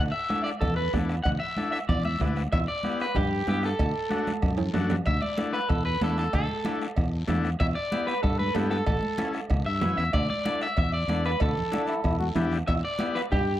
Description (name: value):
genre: latin, cumbia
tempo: 189 BPM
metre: 4/4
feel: straight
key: D major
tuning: A4 = 440 Hz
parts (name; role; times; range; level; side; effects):
- fingered electric bass; bass; 0.0-13.6 s; A1 to G2; -28 LUFS; equal; none
- electric guitar at the edge of break-up; melody; 0.1-13.6 s; G4 to F#5; -29 LUFS; equal; spring reverb, slapback echo
- combo organ; accompaniment; 0.3-13.2 s; A3 to B4; -31 LUFS; left 4 dB; none
- bombo; percussion; 0.3-13.5 s; none; -30 LUFS; equal; none
- congas; percussion; 0.3-13.5 s; none; -34 LUFS; right 1 dB; none
- guiro; percussion; 0.3-13.6 s; none; -46 LUFS; left 5 dB; none
- cowbell and timbales; percussion; 0.6-13.5 s; none; -38 LUFS; right 6 dB; none
- bright trombone; second line; 11.7-12.6 s; D4 to F#4; -32 LUFS; left 4 dB; none
room: little or no reverb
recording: dry, close 1970s-style studio recording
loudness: -24 LUFS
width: side -13 dB against mid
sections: 0.0-5.1 A section; 5.1-13.6 A section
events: drum fill 4.3-5.1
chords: 0.0 Dsus2; 2.5 Em; 3.8 D; 5.1 Dsus2; 7.6 Em; 8.9 A; 10.1 Dsus2; 12.7 Em